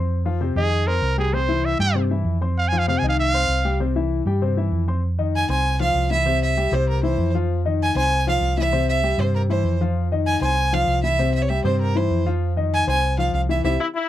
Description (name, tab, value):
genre	latin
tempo	195 BPM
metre	4/4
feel	straight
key	F minor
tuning	A4 = 440 Hz
part	warm grand piano	accompaniment	0.0-13.7 s	C3 to C6	-24 LUFS	left 7 dB	none
part	hollow-body short-scale fingered electric bass	bass	0.0-13.8 s	C2 to G2	-22 LUFS	right 1 dB	none
part	bright trumpet	melody	0.6-3.8 s	Ab4 to Ab5	-22 LUFS	right 2 dB	slapback echo
part	rich violin	melody	5.4-13.7 s	Bb4 to Ab5	-23 LUFS	right 3 dB	none
part	brilliant trombone section	second line	13.8-14.1 s	E4	-22 LUFS	left 4 dB	none
room	little or no reverb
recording	dry, close 1970s-style studio recording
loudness	-18 LUFS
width	side -12 dB against mid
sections	0.0-5.0 A section; 5.0-14.1 B section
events	trumpet solo 0.0-5.0; band accent 13.6-14.1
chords	0.1 Fm7; 1.3 C; 2.6 F5; 3.8 C; 5.0 Fm7; 6.3 C; 7.5 Fm7; 8.7 C; 10.0 Fm7; 11.2 C; 12.4 Fm7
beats	| 0.10 0.41 0.72 1.03 | 1.33 1.64 1.95 2.26 | 2.57 2.88 3.18 3.49 | 3.80 4.11 4.42 4.72 | 5.03 5.34 5.65 5.96 | 6.26 6.57 6.88 7.19 | 7.49 7.80 8.11 8.42 | 8.72 9.03 9.34 9.65 | 9.96 10.26 10.57 10.88 | 11.19 11.49 11.80 12.11 | 12.42 12.72 13.03 13.34 | 13.65 13.96